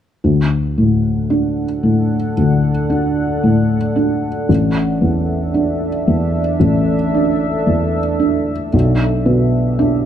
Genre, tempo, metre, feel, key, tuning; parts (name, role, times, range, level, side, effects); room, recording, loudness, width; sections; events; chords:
neoclassical piano and strings; 57 BPM; 4/4; rubato; D major; A4 = 440 Hz
felt-muted upright piano; accompaniment; 0.2-10.1 s; A1 to D4; -14 LUFS; equal
deep dark ambient pad; sustained chords; 1.2-10.1 s; D4 to F#5; -21 LUFS; right 2 dB; chorus, built-in reverb
light reverb; dark, warm production; -14 LUFS; side -10 dB against mid
0.2-10.1 A section
0.2 D; 4.5 Asus4; 8.7 G6/B